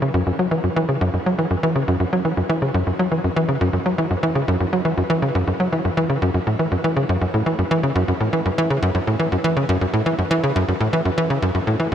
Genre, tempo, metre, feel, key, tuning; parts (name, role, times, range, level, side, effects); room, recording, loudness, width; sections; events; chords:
ambient; 121 BPM; 4/4; straight; F# minor; A4 = 440 Hz
tight sequencer bass; solo; 0.0-11.9 s; F#2 to F#3; -18 LUFS; equal; wide subtle chorus, analog delay
wet shimmer reverb, RT60 8.3 s; -18 LUFS; side -9 dB against mid
0.0-11.9 A section